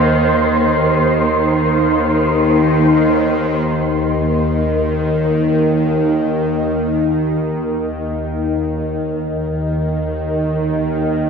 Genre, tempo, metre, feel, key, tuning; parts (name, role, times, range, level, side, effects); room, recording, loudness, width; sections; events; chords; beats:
dark ambient drone; free time; A4 = 440 Hz
bowed-like drone; drone; 0.0-11.3 s; Eb2 to Eb3; -15 LUFS; equal; built-in reverb, phaser
wind-like tuned noise texture; texture; 0.0-3.7 s; Bb3 to C5; -18 LUFS; right 1 dB; built-in reverb, shimmer reverb
wet cathedral reverb, RT60 5.7 s; cassette tape; -14 LUFS; side -6 dB against mid
0.0-3.7 A section; 3.7-11.3 B section
filter sweep on synth drone 3.7-11.3
0.0 Eb5; 3.7 N.C.
free time